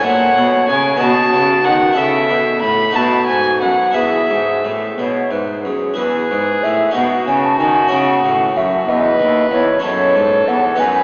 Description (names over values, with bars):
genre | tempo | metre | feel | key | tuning
classical, baroque-style sonata movement with continuo | 62 BPM (dotted quarters) | 6/8 | straight | E major | A4 = 439 Hz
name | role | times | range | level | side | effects
baroque flute | melody | 0.0-11.0 s | F#4 to A5 | -19 LUFS | equal | none
warm violin | second line | 0.0-11.0 s | F#4 to B5 | -20 LUFS | equal | none
harpsichord | accompaniment | 0.0-11.0 s | D#2 to E5 | -25 LUFS | equal | none
rich cello | bass | 0.0-11.0 s | D#2 to D#3 | -23 LUFS | equal | none
room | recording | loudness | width
wet cathedral reverb, RT60 4.5 s | recorded in a church or concert hall, vinyl crackle, AM radio sound | -15 LUFS | mono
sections
0.0-6.0 A section; 6.0-11.0 B section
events
none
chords
0.1 F#7/A#; 1.0 B; 2.0 A; 3.0 B; 4.0 E; 7.0 B; 7.9 C#m; 9.8 F#m7